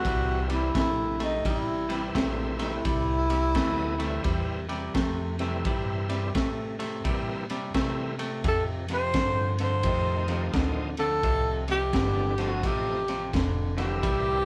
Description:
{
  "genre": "electric blues shuffle",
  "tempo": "86 BPM",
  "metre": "4/4",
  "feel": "swing 63% on 8ths",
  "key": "unclear",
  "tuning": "A4 = 440 Hz",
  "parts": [
    { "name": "breathy tenor saxophone", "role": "melody", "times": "0.0-14.4 s", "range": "Eb4 to C5", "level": "-30 LUFS", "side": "equal", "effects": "none" },
    { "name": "bright tonewheel organ", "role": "accompaniment", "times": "0.0-14.4 s", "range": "D3 to Eb5", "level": "-38 LUFS", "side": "equal", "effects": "slow rotary speaker, overdrive, chorus vibrato" },
    { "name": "direct-recorded clean electric guitar", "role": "riff", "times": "0.0-14.4 s", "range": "F2 to A3", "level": "-36 LUFS", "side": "equal", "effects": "none" },
    { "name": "upright bass", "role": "bass", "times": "0.0-14.4 s", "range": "F1 to C3", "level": "-34 LUFS", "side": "equal", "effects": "none" },
    { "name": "crunchy breakbeat drum kit", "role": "drums", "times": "0.0-14.2 s", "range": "kick drum, ride cymbal, snare drum", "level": "-33 LUFS", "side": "equal", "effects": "none" }
  ],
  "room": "light reverb",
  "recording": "band playing live in one room",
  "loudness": "-27 LUFS",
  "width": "mono",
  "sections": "0.0-14.4 A section",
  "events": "none",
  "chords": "0.0 C7; 8.4 F7"
}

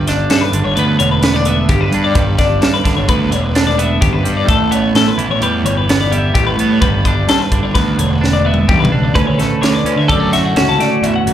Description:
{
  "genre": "math rock and midwest emo",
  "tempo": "129 BPM",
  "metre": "5/4",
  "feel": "straight",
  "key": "G lydian",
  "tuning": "A4 = 442 Hz",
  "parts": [
    { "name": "twelve-string electric guitar", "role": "accompaniment", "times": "0.0-11.3 s", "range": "D2 to D4", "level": "-18 LUFS", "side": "right 5 dB", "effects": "none" },
    { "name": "twelve-string electric guitar", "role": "arpeggios", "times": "0.0-11.3 s", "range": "G4 to A5", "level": "-18 LUFS", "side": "left 7 dB", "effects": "none" },
    { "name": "fuzz picked electric bass", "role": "bass", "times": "0.0-11.3 s", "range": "E1 to D3", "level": "-16 LUFS", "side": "equal", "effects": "overdrive" },
    { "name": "crisp fusion drum kit", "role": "drums", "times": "0.1-11.3 s", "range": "hi-hat, kick drum, snare drum, toms", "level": "-17 LUFS", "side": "equal", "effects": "none" },
    { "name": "twelve-string electric guitar", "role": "melody", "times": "9.2-11.3 s", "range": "F#4 to B4", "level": "-19 LUFS", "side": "equal", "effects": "slapback echo, analog delay" }
  ],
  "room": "small room ambience",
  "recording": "live gig heard through the venue's PA, club reverb",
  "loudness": "-11 LUFS",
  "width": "side -10 dB against mid",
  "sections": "0.0-9.2 A section; 9.2-11.3 B section",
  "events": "drum fill 8.2-9.2",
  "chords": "0.0 G6; 4.5 A9; 6.8 G6; 9.2 Dmaj9"
}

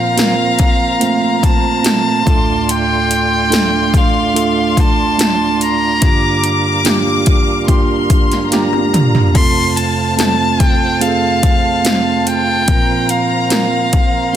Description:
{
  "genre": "pop ballad",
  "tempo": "72 BPM",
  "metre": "4/4",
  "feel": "straight",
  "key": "unclear",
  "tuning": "A4 = 441 Hz",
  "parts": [
    { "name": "dark violin", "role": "melody", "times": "0.0-14.4 s", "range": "F5 to C6", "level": "-17 LUFS", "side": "left 1 dB", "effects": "none" },
    { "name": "warm studio violin section", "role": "second line", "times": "0.0-14.3 s", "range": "A5 to D6", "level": "-21 LUFS", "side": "left 4 dB", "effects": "none" },
    { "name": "tine electric piano", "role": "accompaniment", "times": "0.0-14.4 s", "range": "D2 to C5", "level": "-16 LUFS", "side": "right 5 dB", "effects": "none" },
    { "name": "percussive tonewheel organ", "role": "sustained chords", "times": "0.0-14.4 s", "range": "Bb2 to F5", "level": "-25 LUFS", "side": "equal", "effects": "overdrive, chorus vibrato, stopped rotary speaker" },
    { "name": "80s electronic pad drums", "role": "drums", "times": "0.2-14.1 s", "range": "crash cymbal, hi-hat, kick drum, snare drum, toms", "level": "-14 LUFS", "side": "left 1 dB", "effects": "gated reverb on snare and toms" }
  ],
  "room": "light reverb, digital ambience",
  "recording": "dense, heavily limited modern master",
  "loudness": "-11 LUFS",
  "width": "side -10 dB against mid",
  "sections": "0.0-14.4 A section",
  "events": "drum fill 8.5-9.3",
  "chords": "0.0 Bbsus2; 2.3 Dm; 6.0 Gm7; 9.3 F; 12.7 Bbsus2"
}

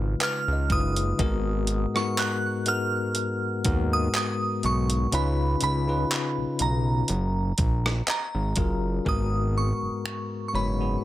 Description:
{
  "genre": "contemporary R&B",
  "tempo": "61 BPM",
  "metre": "4/4",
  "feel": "swing 54% on 16ths",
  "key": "G# dorian",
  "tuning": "A4 = 440 Hz",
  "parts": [
    { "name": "bell-like tine electric piano", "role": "accompaniment", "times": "0.0-11.0 s", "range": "G#2 to C#5", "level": "-28 LUFS", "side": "left 3 dB", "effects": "fast stereo tremolo" },
    { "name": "fat analog bass", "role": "bass", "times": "0.0-11.0 s", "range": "F#1 to D#2", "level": "-26 LUFS", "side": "equal", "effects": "none" },
    { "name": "glassy synth bell", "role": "melody", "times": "0.2-11.0 s", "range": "A#5 to F#6", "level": "-30 LUFS", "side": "right 2 dB", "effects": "chorus, digital delay" },
    { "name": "gated 80s digital drum machine", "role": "drums", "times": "0.2-10.3 s", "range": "finger snaps, handclaps, hi-hat, kick drum, rim click", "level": "-27 LUFS", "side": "right 1 dB", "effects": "gated reverb" },
    { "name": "kalimba", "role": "texture", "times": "0.2-1.9, 8.1-9.5 s", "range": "B4 to D#5", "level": "-39 LUFS", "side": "right 3 dB", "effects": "digital delay" }
  ],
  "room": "little or no reverb",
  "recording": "none",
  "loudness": "-23 LUFS",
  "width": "side -14 dB against mid",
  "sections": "0.0-9.1 A section; 9.1-11.0 B section",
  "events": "none",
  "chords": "0.0 C#7; 1.2 G#m9; 5.1 C#7; 7.1 F#maj7; 9.1 G#m9"
}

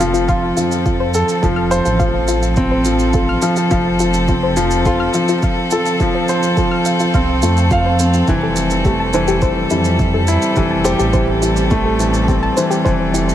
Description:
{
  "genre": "piano and strings electronica",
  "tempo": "105 BPM",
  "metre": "4/4",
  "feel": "straight",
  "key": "F major",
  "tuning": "A4 = 440 Hz",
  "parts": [
    { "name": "rich string quartet", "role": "sustained chords", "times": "0.0-13.3 s", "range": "F3 to A4", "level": "-20 LUFS", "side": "right 1 dB", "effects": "sidechain pumping" },
    { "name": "soft round pluck", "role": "arpeggios", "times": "0.0-13.2 s", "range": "E4 to F6", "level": "-23 LUFS", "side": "left 2 dB", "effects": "chorus, sidechain pumping, tape echo" },
    { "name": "warm concert grand piano", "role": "riff", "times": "0.0-13.3 s", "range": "E3 to F5", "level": "-17 LUFS", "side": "left 1 dB", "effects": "low-pass filter, tape echo" },
    { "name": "dark detuned saw bass", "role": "bass", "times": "0.0-13.3 s", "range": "F1 to F2", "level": "-19 LUFS", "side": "equal", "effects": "sidechain pumping" },
    { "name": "shaker", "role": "drums", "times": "0.0-13.3 s", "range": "none", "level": "-27 LUFS", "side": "right 5 dB", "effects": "none" },
    { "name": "electronic kick drum", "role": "drums", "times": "0.3-13.0 s", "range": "none", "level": "-19 LUFS", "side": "equal", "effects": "none" }
  ],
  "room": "light reverb, digital ambience",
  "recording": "none",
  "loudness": "-13 LUFS",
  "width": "side -11 dB against mid",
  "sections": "0.0-13.3 A section",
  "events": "none",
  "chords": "0.0 F; 8.3 Am7/F"
}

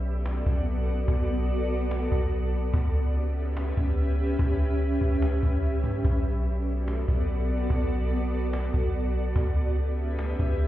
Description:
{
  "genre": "hip hop, atmospheric cloud-rap",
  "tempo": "145 BPM",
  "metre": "4/4",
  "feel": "half-time",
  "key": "B minor",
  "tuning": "A4 = 444 Hz",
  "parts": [
    { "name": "granular cloud pad", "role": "sustained chords", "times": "0.0-10.7 s", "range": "B3 to E5", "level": "-30 LUFS", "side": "equal", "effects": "built-in reverb" },
    { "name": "soft 808-style bass", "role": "bass", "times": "0.0-10.7 s", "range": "B1 to G2", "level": "-25 LUFS", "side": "equal", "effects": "none" },
    { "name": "cajon", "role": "drums", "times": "0.0-10.7 s", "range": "none", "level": "-34 LUFS", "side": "equal", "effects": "none" }
  ],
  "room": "small room ambience",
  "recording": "heard muffled through a wall, stone room reverb, EQ",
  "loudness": "-24 LUFS",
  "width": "side -14 dB against mid",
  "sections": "0.0-10.7 A section",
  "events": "none",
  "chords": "0.0 Bm7; 2.7 C#m7b5; 6.0 Bm7; 9.4 C#m7b5"
}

